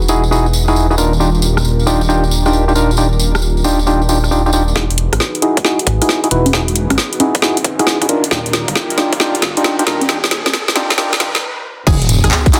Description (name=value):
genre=UK garage, two-step garage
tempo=135 BPM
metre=4/4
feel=swing 67% on 16ths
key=unclear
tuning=A4 = 441 Hz
part: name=warm analog pad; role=sustained chords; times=0.0-12.6 s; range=B3 to B4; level=-28 LUFS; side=equal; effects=chorus, sidechain pumping
part: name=dark detuned saw bass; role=bass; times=0.0-12.3 s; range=D#1 to D#2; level=-18 LUFS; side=equal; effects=none
part: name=tambourine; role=percussion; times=0.0-4.7, 11.9-12.6 s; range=none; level=-25 LUFS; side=equal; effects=none
part: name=percussive organ stab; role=stabs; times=0.1-12.6 s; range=D4 to B4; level=-19 LUFS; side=equal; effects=chorus, digital delay
part: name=garage drum kit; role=drums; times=0.7-12.6 s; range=congas, crash cymbal, handclaps, hi-hat, rim click, snare drum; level=-18 LUFS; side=equal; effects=small room ambience
part: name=electronic kick drum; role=drums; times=4.8-12.5 s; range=none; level=-17 LUFS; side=equal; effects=high-pass filter on kick, small room ambience
part: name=riser and sub drop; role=sound effects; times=5.5-12.6 s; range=none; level=-26 LUFS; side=equal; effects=none
part: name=string-like resonator pluck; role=melody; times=11.9-12.4 s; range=G#4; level=-26 LUFS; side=equal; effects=chorus, phaser, digital delay
room=light reverb, digital ambience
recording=dense, heavily limited modern master, high-pass filter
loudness=-14 LUFS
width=mono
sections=0.0-4.8 A section; 4.8-11.9 B section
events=filter sweep on drum 0.0-4.8; build-up 4.8-11.9; drum fill 4.8-11.4; filter sweep on synth stab 4.8-11.9; filter sweep 4.8-11.9; riser 5.8-11.4; stop 11.4-11.9; impact 11.9-12.6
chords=0.0 Emaj9; 1.0 D#maj9; 4.8 Emaj9; 8.1 D#maj9; 11.9 Emaj9